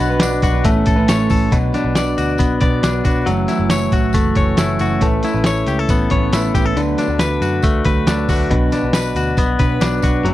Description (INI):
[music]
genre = jangly indie pop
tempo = 138 BPM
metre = 4/4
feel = straight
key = unclear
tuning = A4 = 440 Hz
[part]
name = electric guitar at the edge of break-up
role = accompaniment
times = 0.0-10.3 s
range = F#2 to B4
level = -22 LUFS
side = right 6 dB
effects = spring reverb
[part]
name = direct-recorded clean electric guitar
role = arpeggios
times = 0.0-10.3 s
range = B2 to D5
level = -18 LUFS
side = left 4 dB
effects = none
[part]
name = vintage muted picked electric bass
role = bass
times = 0.0-10.3 s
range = F#1 to F#2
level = -21 LUFS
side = equal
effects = none
[part]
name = tambourine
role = percussion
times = 0.0-10.1 s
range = none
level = -35 LUFS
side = right 12 dB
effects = none
[part]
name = lo-fi sampler-style drum kit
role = drums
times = 0.2-10.3 s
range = hi-hat, kick drum, snare drum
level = -18 LUFS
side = equal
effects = none
[sound]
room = little or no reverb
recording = dry, close 1970s-style studio recording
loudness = -14 LUFS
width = side -14 dB against mid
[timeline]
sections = 0.0-1.5 A section; 1.5-10.3 B section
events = none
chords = 0.0 Bm; 0.7 Aadd9; 1.5 Bm; 3.3 F#m7; 5.0 Aadd9; 6.8 D6; 8.5 Bm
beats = 0.21 0.65 1.09 | 1.52 1.96 2.40 2.83 | 3.27 3.71 4.14 4.58 | 5.02 5.45 5.89 6.33 | 6.76 7.20 7.63 8.07 | 8.51 8.94 9.38 9.81 | 10.25